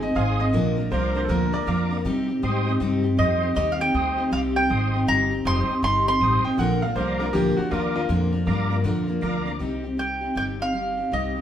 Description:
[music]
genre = country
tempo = 159 BPM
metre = 4/4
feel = swing 64% on 8ths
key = C minor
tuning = A4 = 442 Hz
[part]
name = mandolin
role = melody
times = 0.0-0.4, 3.2-6.4, 10.0-11.4 s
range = Eb5 to C6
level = -24 LUFS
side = right 1 dB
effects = none
[part]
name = bright upright piano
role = second line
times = 0.0-1.7, 6.4-8.1 s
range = F4 to G5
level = -27 LUFS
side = equal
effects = none
[part]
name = picked steel-string acoustic guitar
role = accompaniment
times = 0.0-11.4 s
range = Bb2 to Bb4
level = -25 LUFS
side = left 1 dB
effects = none
[part]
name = upright bass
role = bass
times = 0.0-11.4 s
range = F1 to C3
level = -26 LUFS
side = left 1 dB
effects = none
[part]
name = tonewheel organ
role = accompaniment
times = 0.2-9.6 s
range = F4 to Eb5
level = -32 LUFS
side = right 2 dB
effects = chorus vibrato, slow rotary speaker
[sound]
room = wet large studio reverb, RT60 1.2 s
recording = band playing live in one room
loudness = -20 LUFS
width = side -10 dB against mid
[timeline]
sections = 0.0-9.6 A section; 9.6-11.4 B section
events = tonewheel organ fill 9.0-9.6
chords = 0.0 Ab; 0.5 Bb; 2.1 Cm; 6.6 Bb; 9.6 Cm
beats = 0.16 | 0.54 0.92 1.30 1.67 | 2.05 2.43 2.81 3.19 | 3.56 3.94 4.32 4.70 | 5.07 5.45 5.83 6.21 | 6.58 6.96 7.34 7.71 | 8.09 8.47 8.85 9.23 | 9.61 9.98 10.36 10.74 | 11.12

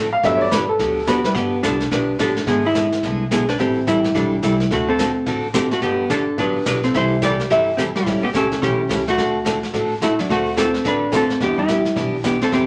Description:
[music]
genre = country, western swing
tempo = 215 BPM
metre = 4/4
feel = swing 61% on 8ths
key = G major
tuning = A4 = 436 Hz
[part]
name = picked steel-string acoustic guitar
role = accompaniment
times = 0.0-12.7 s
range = C3 to A4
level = -26 LUFS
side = equal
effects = none
[part]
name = upright bass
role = bass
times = 0.0-12.7 s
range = G1 to E2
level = -31 LUFS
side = equal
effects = none
[part]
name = clear upright piano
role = accompaniment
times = 0.1-1.4, 10.3-11.6 s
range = F#3 to F5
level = -23 LUFS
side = equal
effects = none
[part]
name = vintage brush drum kit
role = drums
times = 0.2-12.7 s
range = brushed snare drum, hi-hat, kick drum, snare drum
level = -28 LUFS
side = equal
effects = none
[part]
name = hollow-body jazz guitar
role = melody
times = 1.1-12.7 s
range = F#3 to E5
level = -21 LUFS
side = equal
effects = none
[sound]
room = wet club reverb, RT60 0.7 s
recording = none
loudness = -19 LUFS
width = mono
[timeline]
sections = 0.0-1.4 A section; 1.4-12.7 B section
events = upright piano solo 0.0-1.4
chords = 0.2 Gmaj7; 2.5 E7/G#; 3.6 Am7; 4.7 D7; 5.8 Gmaj7; 6.9 C69; 8.1 A7/C#; 9.2 D7; 11.4 Em7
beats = | 0.24 0.52 0.80 1.07 | 1.35 1.63 1.91 2.19 | 2.47 2.75 3.03 3.31 | 3.59 3.87 4.15 4.43 | 4.71 4.99 5.26 5.54 | 5.82 6.10 6.38 6.66 | 6.94 7.22 7.50 7.78 | 8.06 8.34 8.62 8.89 | 9.17 9.45 9.73 10.01 | 10.29 10.57 10.85 11.13 | 11.40 11.68 11.96 12.24 | 12.52

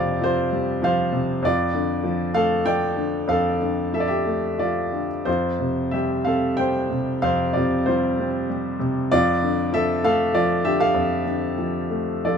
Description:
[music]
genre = classical, lyrical solo piano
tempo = 86-99 BPM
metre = 3/4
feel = rubato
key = unclear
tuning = A4 = 440 Hz
[part]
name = warm grand piano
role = solo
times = 0.0-12.4 s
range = F2 to G5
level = -20 LUFS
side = equal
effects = none
[sound]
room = light reverb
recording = minimal, uncompressed stereo recording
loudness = -20 LUFS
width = side -6 dB against mid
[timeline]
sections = 0.0-12.4 A section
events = none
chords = 0.0 Fsus2; 1.4 Dm/F; 5.3 Fsus2; 9.1 Dm/F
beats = 0.23 0.84 | 1.45 2.05 2.66 | 3.29 3.94 4.61 | 5.27 5.94 6.59 | 7.24 7.88 8.51 | 9.13 9.74 10.35 | 10.96 11.59 12.26

